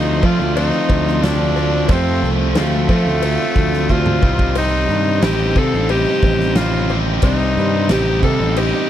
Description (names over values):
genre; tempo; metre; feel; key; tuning
classic rock; 90 BPM; 4/4; straight; C dorian; A4 = 440 Hz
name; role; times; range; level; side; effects
raspy tenor saxophone; melody; 0.0-8.9 s; A3 to A4; -20 LUFS; left 2 dB; none
octave-fuzz lead guitar; second line; 0.0-8.9 s; F4 to F5; -30 LUFS; right 3 dB; distortion
picked steel-string acoustic guitar; accompaniment; 0.0-8.9 s; F2 to G4; -28 LUFS; right 8 dB; none
cranked stack guitar; riff; 0.0-8.9 s; C3 to F4; -23 LUFS; left 15 dB; overdrive
overdriven electric guitar; riff; 0.0-8.9 s; C3 to F4; -24 LUFS; right 13 dB; none
fuzz fingered electric bass; bass; 0.0-8.7 s; A1 to F3; -19 LUFS; equal; overdrive
big rock drum kit; drums; 0.2-8.7 s; crash cymbal, kick drum, snare drum, toms; -21 LUFS; equal; none
cowbell; percussion; 0.2-8.7 s; none; -28 LUFS; left 12 dB; none
room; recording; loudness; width
little or no reverb; dry, close 1970s-style studio recording; -14 LUFS; side -11 dB against mid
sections
0.0-8.9 A section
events
drum fill 3.9-4.6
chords
0.0 F; 4.2 Cm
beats
0.56 1.23 | 1.89 2.56 3.23 3.89 | 4.56 5.23 5.89 6.56 | 7.23 7.89 8.56